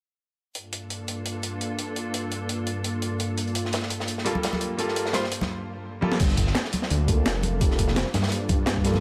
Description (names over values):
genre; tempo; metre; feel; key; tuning
liquid drum and bass; 170 BPM; 4/4; swing 53% on 16ths; G minor; A4 = 440 Hz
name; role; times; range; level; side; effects
glassy FM pad; sustained chords; 0.7-9.0 s; G2 to A4; -34 LUFS; equal; ensemble chorus, built-in reverb, sidechain pumping
breakbeat sampler-style drum kit; drums; 0.6-8.9 s; crash cymbal, hi-hat, snare drum, toms; -32 LUFS; equal; small room ambience
crunchy breakbeat drum kit; drums; 3.4-9.0 s; hi-hat, snare drum; -34 LUFS; equal; high-pass filter on hats, small room ambience, high-pass filter on snare, high-pass filter on room
bright concert grand piano; accompaniment; 4.2-9.0 s; G3 to C5; -32 LUFS; equal; low-pass filter, tape echo
congas; percussion; 4.4-9.0 s; none; -34 LUFS; equal; none
dark detuned saw bass; bass; 6.2-9.0 s; F1 to G2; -28 LUFS; equal; tube saturation
electronic kick drum; drums; 6.2-8.8 s; none; -26 LUFS; equal; small room ambience
room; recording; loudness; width
light reverb, small room ambience; none; -26 LUFS; mono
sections
0.6-6.2 A section; 6.2-9.0 B section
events
break 5.5-6.2; drum fill 6.0; filter sweep on grand piano 6.2-9.0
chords
0.6 Gm9